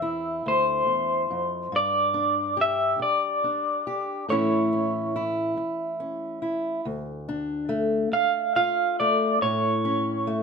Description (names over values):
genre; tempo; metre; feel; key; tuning
folk; 47 BPM (dotted quarters); 6/8; straight; D harmonic minor from 6.8 s; A4 = 441 Hz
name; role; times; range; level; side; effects
electric guitar through a small old amp; melody; 0.0-10.4 s; C5 to F5; -23 LUFS; right 1 dB; tremolo
fingerpicked old ladder-braced acoustic guitar; accompaniment; 0.0-10.4 s; D2 to G4; -27 LUFS; left 1 dB; none
room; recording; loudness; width
moderate studio reverb, RT60 0.7 s; close, detailed microphones; -23 LUFS; side -5 dB against mid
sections
0.0-6.8 A section; 6.8-10.4 B section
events
none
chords
0.0 C; 1.7 G5; 4.3 A; 6.8 Dm; 9.4 A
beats
0.46 | 1.74 3.02 | 4.29 5.57 | 6.85 8.12 | 9.40